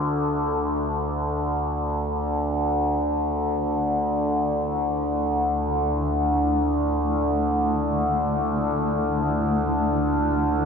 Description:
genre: dark ambient drone.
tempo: free time.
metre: none.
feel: none.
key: unclear.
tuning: A4 = 440 Hz.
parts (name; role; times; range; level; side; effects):
dark detuned synth bell; arpeggios; 0.0-2.2 s; none; barely audible; none; none.
overtone-sweeping drone; drone; 0.0-10.7 s; D2 to D3; -22 LUFS; equal; chorus, built-in reverb.
granular cloud pad; sustained chords; 3.3-10.7 s; D3 to E4; -30 LUFS; left 1 dB; built-in reverb, shimmer reverb.
room: wet huge ambient reverb, RT60 7.2 s.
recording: dark, warm production.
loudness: -21 LUFS.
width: side -6 dB against mid.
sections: 0.0-2.2 A section; 2.2-10.7 B section.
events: none.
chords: 0.0 Dsus2.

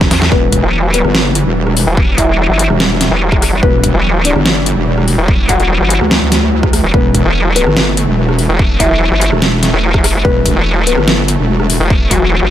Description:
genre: heavy wobble dubstep.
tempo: 145 BPM.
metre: 4/4.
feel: half-time.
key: E minor.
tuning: A4 = 436 Hz.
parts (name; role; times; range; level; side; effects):
supersaw pad; sustained chords; 0.0-12.5 s; E3 to A3; -20 LUFS; right 1 dB; sidechain pumping.
wobble bass; bass; 0.0-11.8 s; E1 to D2; -13 LUFS; equal; chorus, overdrive.
dubstep drum kit; drums; 0.0-12.2 s; hi-hat, rim click, snare drum; -15 LUFS; equal; overdrive.
electronic kick drum; drums; 0.0-12.2 s; none; -14 LUFS; equal; overdrive.
vowel-sweep wobble bass; bass; 0.1-12.5 s; E1 to E2; -12 LUFS; equal; chorus, overdrive.
felt-muted upright piano; melody; 0.3-12.5 s; F#3 to F#5; -18 LUFS; left 3 dB; ping-pong delay.
room: digital ambience.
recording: none.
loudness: -9 LUFS.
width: side -11 dB against mid.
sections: 0.0-12.5 A section.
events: drum fill 0.0-0.3.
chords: 0.0 Emadd9.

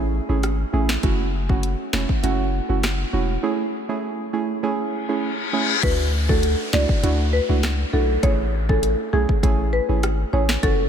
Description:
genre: dancehall.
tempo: 100 BPM.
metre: 4/4.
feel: straight.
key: A major.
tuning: A4 = 441 Hz.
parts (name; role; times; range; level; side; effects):
deep mellow chord stab; accompaniment; 0.0-10.8 s; A3 to G#4; -24 LUFS; right 5 dB; chorus.
punchy sub bass; bass; 0.0-10.9 s; E1 to D2; -22 LUFS; left 1 dB; none.
downlifter and reverse cymbal; sound effects; 5.1-10.6 s; none; -29 LUFS; left 5 dB; none.
afro-pop drum kit; drums; 0.4-10.8 s; crash cymbal, finger snaps, hi-hat, kick drum, rim click, snare drum; -24 LUFS; left 1 dB; none.
marimba with medium mallets; melody; 5.8-10.8 s; G#4 to D5; -24 LUFS; left 1 dB; analog delay.
room: light reverb.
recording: none.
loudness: -19 LUFS.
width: side -8 dB against mid.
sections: 0.0-5.8 A section; 5.8-10.9 B section.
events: reverse cymbal 5.1-5.8.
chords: 0.0 Amaj7; 1.0 F#m7; 3.4 Amaj7; 5.8 Dadd9; 8.2 Amaj7.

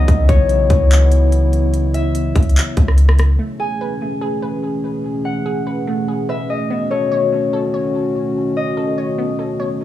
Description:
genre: hip hop, atmospheric cloud-rap.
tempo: 145 BPM.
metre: 4/4.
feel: half-time.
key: unclear.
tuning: A4 = 438 Hz.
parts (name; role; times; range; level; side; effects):
concert harp; melody; 0.0-9.8 s; C#5 to G#5; -22 LUFS; left 4 dB; tape echo.
dark analog pad; sustained chords; 0.0-9.8 s; B2 to G#4; -21 LUFS; left 1 dB; chorus, sidechain pumping.
soft 808-style bass; bass; 0.0-3.4 s; B1 to C#2; -13 LUFS; equal; none.
trap drum kit; drums; 0.1-3.3 s; handclaps, hi-hat, kick drum, rim click; -18 LUFS; equal; none.
glassy wavetable pluck; arpeggios; 3.4-9.8 s; A3 to C#5; -25 LUFS; right 3 dB; chorus, tape echo.
room: little or no reverb.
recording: echo-heavy mix, small room ambience.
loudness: -15 LUFS.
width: side -13 dB against mid.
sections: 0.0-3.4 A section; 3.4-9.8 B section.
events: none.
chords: 0.0 C#m11; 3.4 Amaj9; 6.7 B9.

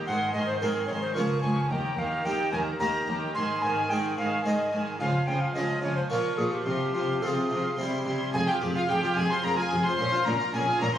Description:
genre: classical, baroque-style concerto movement with solo episodes.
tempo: 109 BPM.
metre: 3/4.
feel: straight.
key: F minor.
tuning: A4 = 443 Hz.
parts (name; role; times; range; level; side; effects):
warm chamber violin section; melody; 0.0-11.0 s; F5 to Db6; -34 LUFS; left 3 dB; none.
rich chamber violin section; second line; 0.0-11.0 s; E4 to C5; -36 LUFS; right 2 dB; none.
dark chamber viola section; accompaniment; 0.0-11.0 s; Eb3 to Ab4; -32 LUFS; right 2 dB; none.
harpsichord; accompaniment; 0.0-11.0 s; Db2 to C5; -33 LUFS; equal; none.
tenor recorder; melody; 0.1-11.0 s; G4 to C6; -29 LUFS; equal; none.
rich chamber cello section; bass; 0.1-10.9 s; Db2 to Db3; -32 LUFS; equal; none.
rich chamber double bass section; bass; 8.3-10.9 s; F1 to Bb1; -37 LUFS; right 2 dB; none.
room: moderate recital hall reverb, RT60 1.6 s.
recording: recorded on a phone in the room, club ambience, compression.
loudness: -24 LUFS.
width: side -10 dB against mid.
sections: 0.0-8.3 A section; 8.3-11.0 B section.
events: none.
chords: 0.1 Ab; 1.2 Db; 1.7 Eb; 3.4 Ab5; 5.0 Db; 6.1 Bbm; 6.7 Fm/C; 7.8 C; 8.3 Fm; 10.0 Bbm.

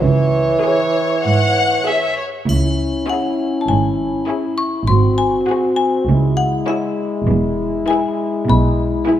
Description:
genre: cinematic, playful, whimsical film cue.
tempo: 100 BPM.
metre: 4/4.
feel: straight.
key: C# minor.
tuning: A4 = 435 Hz.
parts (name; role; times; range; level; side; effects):
warm chamber violin section; melody; 0.0-9.2 s; B4 to C#5; -28 LUFS; left 1 dB; none.
mellow bassoon; accompaniment; 0.0-2.2 s; E3; -18 LUFS; right 2 dB; none.
dark chamber double bass section; bass; 0.0-9.0 s; E1 to C#2; -20 LUFS; right 2 dB; none.
rich chamber cello section; bass; 0.0-9.0 s; C#2 to C#3; -20 LUFS; right 2 dB; none.
rich chamber violin section; second line; 0.6-9.2 s; G#4 to F#5; -20 LUFS; left 2 dB; none.
rich chamber viola section; accompaniment; 0.6-9.2 s; E4 to G#4; -23 LUFS; equal; none.
mellow French horn section; sustained chords; 2.5-9.2 s; G#3 to F#4; -19 LUFS; left 2 dB; none.
triangle; percussion; 2.5-3.6 s; none; -33 LUFS; left 1 dB; none.
xylophone with wooden mallets; melody; 3.1-9.2 s; E5 to C#6; -22 LUFS; left 4 dB; none.
room: moderate scoring stage reverb, RT60 2.1 s.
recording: dark, warm production.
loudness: -15 LUFS.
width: side -11 dB against mid.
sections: 0.0-2.5 A section; 2.5-9.2 B section.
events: none.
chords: 0.0 C#m; 4.9 G#7; 6.1 C#m; 7.3 E.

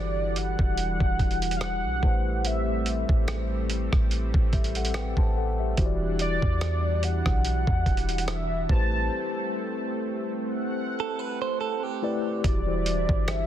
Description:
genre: contemporary R&B.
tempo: 72 BPM.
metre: 4/4.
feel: swing 54% on 16ths.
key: A dorian.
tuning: A4 = 440 Hz.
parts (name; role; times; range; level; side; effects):
warm velvety synth lead; melody; 0.0-13.5 s; D5 to A5; -31 LUFS; right 1 dB; chorus, digital delay.
mellow tine electric piano; accompaniment; 0.0-13.5 s; E3 to A5; -32 LUFS; left 5 dB; medium stereo tremolo.
lush unison pad; sustained chords; 0.0-13.5 s; E3 to F#5; -34 LUFS; equal; chorus.
clean 808-style bass; bass; 0.0-13.5 s; E1 to E2; -28 LUFS; equal; none.
dusty soul sampler-style drum kit; drums; 0.4-13.5 s; hi-hat, kick drum, rim click; -26 LUFS; equal; soft clipping on snare.
direct-recorded clean electric guitar; arpeggios; 11.0-12.4 s; G4 to C5; -30 LUFS; right 11 dB; spring reverb, digital delay.
room: little or no reverb.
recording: dense, heavily limited modern master.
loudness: -24 LUFS.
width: side -11 dB against mid.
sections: 0.0-12.4 A section; 12.4-13.5 B section.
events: break 9.1-12.4.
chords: 0.0 Em9; 2.0 Am7; 5.8 Em9; 8.7 Am7; 12.4 Em9.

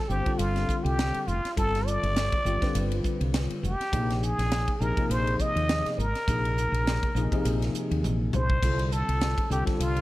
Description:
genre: electric jazz fusion.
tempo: 102 BPM.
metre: 4/4.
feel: swing 56% on 16ths.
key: unclear.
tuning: A4 = 439 Hz.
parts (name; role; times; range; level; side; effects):
trumpet with plunger mute; melody; 0.0-10.0 s; F4 to Eb5; -30 LUFS; equal; slapback echo.
bell-like tine electric piano; accompaniment; 0.0-10.0 s; C3 to C5; -32 LUFS; left 2 dB; fast stereo tremolo, ensemble chorus.
woody fretless electric bass; bass; 0.1-10.0 s; F1 to Eb2; -28 LUFS; equal; wide subtle chorus.
crisp fusion drum kit; drums; 0.1-10.0 s; crash cymbal, hi-hat, kick drum, ride cymbal, snare drum, toms; -31 LUFS; equal; none.
room: small room ambience.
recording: none.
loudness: -24 LUFS.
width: side -17 dB against mid.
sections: 0.0-10.0 A section.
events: drum fill 8.0-8.6.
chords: 0.0 G9sus4; 3.9 Bb9sus4; 8.6 Csus4.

